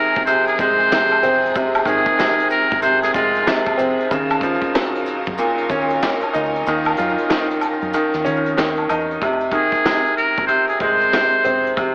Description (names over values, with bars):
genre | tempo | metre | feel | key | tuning
hip hop, boom-bap hip-hop | 94 BPM | 4/4 | swing 61% on 16ths | unclear | A4 = 440 Hz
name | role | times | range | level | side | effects
trumpet with metal mute | melody | 0.0-3.6, 9.5-11.7 s | F4 to C5 | -17 LUFS | equal | high-pass filter, low-pass filter, tape echo
bright upright piano | accompaniment | 0.0-11.9 s | Bb2 to F4 | -19 LUFS | equal | high-pass filter, low-pass filter, tape echo
warm studio string section | sustained chords | 0.0-9.2 s | F3 to Bb4 | -28 LUFS | equal | high-pass filter, low-pass filter
soft brush drum kit | drums | 0.1-11.9 s | hi-hat, kick drum, snare drum | -24 LUFS | equal | none
deep dub fingered electric bass | bass | 0.2-11.9 s | Fb1 to Eb3 | -31 LUFS | equal | none
maracas and woodblock | percussion | 0.3-9.1 s | none | -26 LUFS | equal | tape echo
room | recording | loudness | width
moderate spring reverb, RT60 1.9 s | echo-heavy mix, vinyl crackle, AM radio sound | -15 LUFS | side -36 dB against mid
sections
0.0-9.2 A section; 9.2-11.9 B section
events
kick muted 6.7-9.2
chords
0.0 Fm7; 4.1 Ebm9; 9.2 Fm7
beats
0.28 0.92 | 1.55 2.19 2.83 3.47 | 4.11 4.75 5.38 6.02 | 6.66 7.30 7.94 8.57 | 9.21 9.85 10.49 11.13 | 11.77